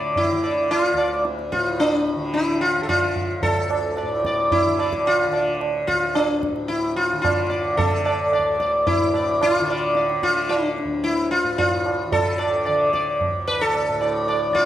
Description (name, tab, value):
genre	indian classical, Hindustani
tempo	110 BPM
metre	4/4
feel	straight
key	unclear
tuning	A4 = 440 Hz
part	sitar	melody	0.0-14.7 s	D4 to D5	-20 LUFS	left 1 dB	none
part	tanpura	drone	0.0-14.7 s	D2 to D3	-29 LUFS	equal	none
part	tabla	percussion	0.2-14.7 s	none	-25 LUFS	right 4 dB	none
room	wet recital hall reverb, RT60 1.6 s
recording	lossy compression artefacts, faint mains hum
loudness	-19 LUFS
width	side -12 dB against mid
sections	0.0-14.7 A section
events	none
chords	none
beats	0.16 0.71 | 1.25 1.80 2.34 2.89 | 3.43 3.98 4.52 5.07 | 5.61 6.16 6.70 7.24 | 7.79 8.33 8.87 9.41 | 9.96 10.50 11.04 11.58 | 12.12 12.66 13.21 13.75 | 14.29